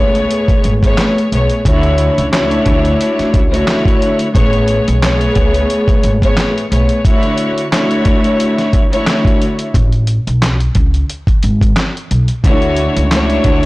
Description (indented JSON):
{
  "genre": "hip hop, boom-bap hip-hop",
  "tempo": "89 BPM",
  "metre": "4/4",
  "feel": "swing 55% on 16ths",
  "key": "A major",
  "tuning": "A4 = 440 Hz",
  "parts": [
    { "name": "warm chamber string section", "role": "accompaniment", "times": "0.0-13.7 s", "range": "A2 to C#5", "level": "-14 LUFS", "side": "left 1 dB", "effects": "high-pass filter, low-pass filter" },
    { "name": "upright bass", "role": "bass", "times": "0.0-13.7 s", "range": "G#1 to D2", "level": "-15 LUFS", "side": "equal", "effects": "transformer saturation" },
    { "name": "dusty soul sampler-style drum kit", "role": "drums", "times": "0.1-13.7 s", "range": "handclaps, hi-hat, kick drum, snare drum", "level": "-14 LUFS", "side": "equal", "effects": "none" }
  ],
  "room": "small room ambience",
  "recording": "blown-out, overdriven recording, vinyl crackle, overdrive",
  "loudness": "-11 LUFS",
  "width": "side -20 dB against mid",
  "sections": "0.0-13.7 A section",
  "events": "none",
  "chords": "0.0 Amaj9; 1.7 Dmaj9; 4.3 Amaj9; 7.0 Dmaj9; 9.7 Amaj9; 12.4 Dmaj9",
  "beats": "0.30 0.98 | 1.65 2.33 3.00 3.67 | 4.35 5.02 5.70 6.37 | 7.04 7.72 8.39 9.07 | 9.74 10.41 11.09 11.76 | 12.44 13.11"
}